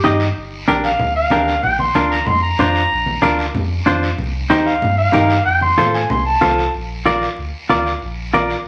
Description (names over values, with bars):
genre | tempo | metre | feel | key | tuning
latin, cumbia | 188 BPM | 4/4 | straight | Bb major | A4 = 440 Hz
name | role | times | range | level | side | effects
warm clarinet | melody | 0.0-6.7 s | G4 to C6 | -19 LUFS | equal | none
semi-hollow electric guitar | accompaniment | 0.0-8.6 s | D4 to Eb5 | -19 LUFS | equal | none
pure sine sub bass | bass | 0.0-8.7 s | G1 to A2 | -25 LUFS | equal | none
congas | percussion | 0.0-8.5 s | none | -28 LUFS | equal | none
guiro | percussion | 0.0-8.7 s | none | -32 LUFS | equal | none
room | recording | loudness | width
wet large studio reverb, RT60 0.9 s | vinyl crackle, nothing above 10.6 kHz | -17 LUFS | mono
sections
0.0-6.7 A section; 6.7-8.7 B section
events
clarinet solo 0.0-6.7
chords
0.4 Gm; 1.6 Bb; 4.2 Cm; 5.5 F; 6.7 Bb